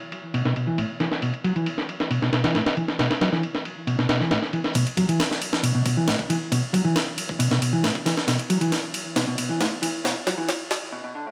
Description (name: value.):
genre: breakbeat, breaks.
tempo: 136 BPM.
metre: 4/4.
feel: straight.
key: B minor.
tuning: A4 = 440 Hz.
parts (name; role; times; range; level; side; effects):
breakbeat sampler-style drum kit; drums; 0.1-10.8 s; kick drum, ride cymbal, snare drum; -28 LUFS; equal; high-pass filter on cymbals, low-pass filter on cymbals, studio reverb, high-pass filter on snare, low-pass filter on snare, high-pass filter on kick, low-pass filter on kick.
mellow electric guitar; riff; 0.3-11.3 s; A2 to F#3; -27 LUFS; equal; tube saturation, low-pass filter, digital delay.
room: moderate plate reverb, RT60 2.1 s.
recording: high-pass filter.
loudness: -24 LUFS.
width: mono.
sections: 0.0-4.8 A section; 4.8-11.3 B section.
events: build-up 4.8-11.3; filter sweep on clean electric guitar 4.8-11.3; drum fill 8.3-10.9; break 10.9-11.3.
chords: none.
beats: 0.34 0.78 | 1.22 1.66 2.11 2.55 | 2.99 3.43 3.87 4.31 | 4.75 5.19 5.63 6.08 | 6.52 6.96 7.40 7.84 | 8.28 8.72 9.16 9.61 | 10.05 10.49 10.93.